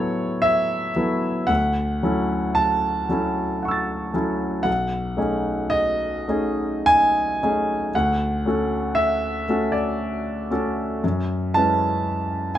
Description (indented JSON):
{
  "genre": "classical, impressionist solo piano",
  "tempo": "57 BPM",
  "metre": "3/4",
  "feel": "uneven beats, rubato",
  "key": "unclear",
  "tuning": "A4 = 440 Hz",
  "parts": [
    { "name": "clear grand piano", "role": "solo", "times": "0.0-12.6 s", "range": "B1 to A6", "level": "-20 LUFS", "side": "equal", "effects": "none" }
  ],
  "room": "light reverb",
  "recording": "minimal, uncompressed stereo recording",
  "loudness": "-20 LUFS",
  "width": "side -11 dB against mid",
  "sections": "0.0-12.6 A section",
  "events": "none",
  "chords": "0.0 A69; 1.5 Dmaj9; 4.7 B13; 7.9 Dmaj7; 11.0 F#m11"
}